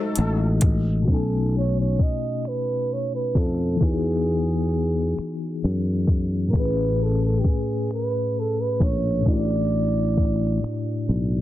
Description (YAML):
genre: slow six-eight R&B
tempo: 44 BPM (dotted quarters)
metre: 6/8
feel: straight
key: unclear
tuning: A4 = 440 Hz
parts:
  - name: breathy flugelhorn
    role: melody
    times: 0.0-11.1 s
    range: G4 to D#5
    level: -28 LUFS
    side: right 4 dB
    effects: slapback echo, plate reverb
  - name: tine electric piano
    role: accompaniment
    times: 0.0-11.4 s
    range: A2 to G#5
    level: -26 LUFS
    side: left 3 dB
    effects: fast stereo tremolo, plate reverb
  - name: warm horn section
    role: stabs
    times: 0.0-0.6 s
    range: F#3 to A4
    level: -32 LUFS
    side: left 4 dB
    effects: plate reverb
  - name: sustaining fretless electric bass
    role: bass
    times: 0.2-11.4 s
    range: A1 to F#2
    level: -23 LUFS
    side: equal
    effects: none
  - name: smooth R&B drum kit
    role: drums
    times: 0.2-11.3 s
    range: finger snaps, hi-hat, kick drum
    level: -21 LUFS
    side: equal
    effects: soft clipping on snare
room: light reverb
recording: dense, heavily limited modern master, low-pass filter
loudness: -20 LUFS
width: side -14 dB against mid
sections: 0.0-1.1 A section; 1.1-11.4 B section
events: filter sweep 1.1-11.4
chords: 0.0 G#7b9; 1.1 B13; 3.8 Emaj7; 6.5 Amaj9; 9.3 Dadd9/A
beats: | 1.08 2.44 | 3.80 5.17 | 6.53 7.89 | 9.26 10.62